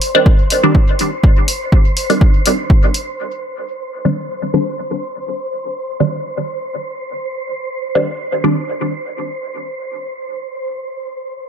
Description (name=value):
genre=dub techno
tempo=123 BPM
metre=4/4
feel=swing 54% on 16ths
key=C minor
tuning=A4 = 440 Hz
part: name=filtered dub chord stab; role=stabs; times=0.0-8.6 s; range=Eb3 to D4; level=-16 LUFS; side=right 1 dB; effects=phaser, cassette tape, sidechain pumping, dub echo
part: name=electronic hi-hat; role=drums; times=0.0-3.0 s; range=none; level=-20 LUFS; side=left 1 dB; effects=low-pass filter on hats
part: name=wind-like tuned noise texture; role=texture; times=0.0-11.5 s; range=C5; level=-24 LUFS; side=right 1 dB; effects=built-in reverb, sidechain pumping
part: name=electronic kick drum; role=drums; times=0.3-2.8 s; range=none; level=-11 LUFS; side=equal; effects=none
room=light reverb, digital ambience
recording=echo-heavy mix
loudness=-15 LUFS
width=side -8 dB against mid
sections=0.0-3.2 A section; 3.2-11.5 B section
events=none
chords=0.0 Cmadd9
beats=0.26 0.75 | 1.24 1.72 2.21 2.70 | 3.19 3.67 4.16 4.65 | 5.14 5.63 6.11 6.60 | 7.09 7.58 8.06 8.55 | 9.04 9.53 10.02 10.50 | 10.99 11.48